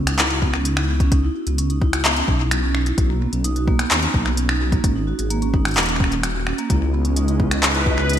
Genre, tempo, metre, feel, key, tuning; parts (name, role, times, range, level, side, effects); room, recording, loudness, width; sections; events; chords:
IDM; 129 BPM; 4/4; straight; C# dorian; A4 = 440 Hz
vibraphone with soft mallets; arpeggios; 0.0-8.2 s; A#3 to G#4; -24 LUFS; right 3 dB; low-pass filter, digital delay
dark detuned saw bass; bass; 0.0-8.2 s; D#1 to D#2; -21 LUFS; equal
organic electronic drum kit; drums; 0.1-8.2 s; finger snaps, handclaps, hi-hat; -21 LUFS; left 1 dB; overdrive, gated reverb, ping-pong delay
electronic kick drum; drums; 0.4-8.0 s; -20 LUFS; equal; overdrive
phased analog pad; sustained chords; 6.9-8.2 s; G#3 to B4; -25 LUFS; right 2 dB; phaser, chorus
flickering grainy texture; texture; 7.1-8.2 s; D#4 to D#5; -32 LUFS; left 3 dB; built-in reverb, ensemble chorus
light reverb; bright 1980s-style digital production; -17 LUFS; side -10 dB against mid
0.0-8.2 A section
0.0 C#m9; 3.0 Bmaj9; 4.8 G#9sus4; 6.7 C#9sus4